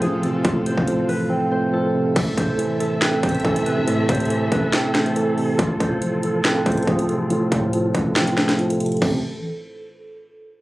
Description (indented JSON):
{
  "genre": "hip hop, trap",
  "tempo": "140 BPM",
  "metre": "4/4",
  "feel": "half-time",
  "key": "A minor",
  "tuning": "A4 = 438 Hz",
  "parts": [
    { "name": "concert harp", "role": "melody", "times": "0.0-9.2 s", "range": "F4 to C5", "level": "-26 LUFS", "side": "right 1 dB", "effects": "low-pass filter, ping-pong delay" },
    { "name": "bright tine electric piano", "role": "accompaniment", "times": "0.0-9.2 s", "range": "A2 to C4", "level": "-21 LUFS", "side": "right 1 dB", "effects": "low-pass filter" },
    { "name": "dark symphonic string section", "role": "sustained chords", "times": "0.0-9.2 s", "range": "A2 to E5", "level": "-29 LUFS", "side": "equal", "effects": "low-pass filter" },
    { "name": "growling 808-style bass", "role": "bass", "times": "0.0-9.4 s", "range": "A1 to A2", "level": "-27 LUFS", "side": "equal", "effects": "none" },
    { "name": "trap drum kit", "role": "drums", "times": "0.0-9.1 s", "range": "crash cymbal, finger snaps, hi-hat, kick drum, snare drum", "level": "-23 LUFS", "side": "equal", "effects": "none" }
  ],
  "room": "little or no reverb",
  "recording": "recorded on a phone in the room, club reverb, compression",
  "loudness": "-18 LUFS",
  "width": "side -17 dB against mid",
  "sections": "0.0-2.2 A section; 2.2-9.0 B section; 9.0-10.6 C section",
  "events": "drums muted 1.3-2.2; filter sweep 2.2-9.0; kick muted 8.2-9.0",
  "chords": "0.0 F/A; 2.2 Am; 5.6 F/A; 9.0 Am"
}